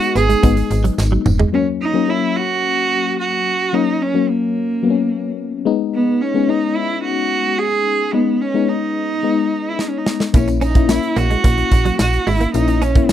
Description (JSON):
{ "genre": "1980s-style pop", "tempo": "109 BPM", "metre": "4/4", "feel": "straight", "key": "unclear", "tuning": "A4 = 440 Hz", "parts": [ { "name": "warm cello", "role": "melody", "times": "0.0-13.1 s", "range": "A#3 to G#4", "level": "-19 LUFS", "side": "right 4 dB", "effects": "slapback echo" }, { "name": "FM electric piano with tremolo", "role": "accompaniment", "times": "0.0-13.1 s", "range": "F#3 to E4", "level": "-19 LUFS", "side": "left 9 dB", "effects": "none" }, { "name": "modern studio drum kit", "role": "drums", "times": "0.0-1.5, 9.8-13.1 s", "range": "hi-hat, kick drum, snare drum, tambourine, toms", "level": "-16 LUFS", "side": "equal", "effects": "none" }, { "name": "direct-recorded clean electric guitar", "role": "riff", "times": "0.2-1.5, 10.5-13.1 s", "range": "F#3 to C#4", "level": "-22 LUFS", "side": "right 5 dB", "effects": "ensemble chorus" }, { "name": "slap-like FM bass", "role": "bass", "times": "0.2-1.5, 10.3-13.1 s", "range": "E1 to A#1", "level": "-18 LUFS", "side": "equal", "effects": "none" }, { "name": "tambourine", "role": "percussion", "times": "0.2-1.4, 10.3-13.1 s", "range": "none", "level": "-38 LUFS", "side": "right 7 dB", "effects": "none" } ], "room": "studio ambience", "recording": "dry, close 1970s-style studio recording", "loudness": "-15 LUFS", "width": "side -10 dB against mid", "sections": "0.0-1.5 A section; 1.5-13.1 A section", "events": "drum fill 1.0-1.5, 9.8-10.3", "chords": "0.0 G#m; 1.5 F#; 5.7 G#m; 10.3 A#dim" }